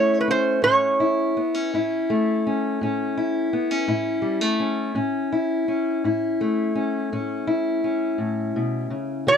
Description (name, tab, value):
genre	acoustic country blues, solo or duo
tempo	56 BPM (dotted quarters)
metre	12/8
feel	straight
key	A major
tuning	A4 = 438 Hz
part	metal-body resonator slide guitar	melody	0.0-1.4, 9.3-9.4 s	B4 to D5	-18 LUFS	right 3 dB	none
part	fingerpicked steel-string acoustic guitar	accompaniment	0.0-9.4 s	A2 to F#4	-22 LUFS	left 2 dB	none
room	light reverb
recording	dry, close 1970s-style studio recording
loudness	-21 LUFS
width	side -7 dB against mid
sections	0.0-9.4 A section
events	none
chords	0.0 A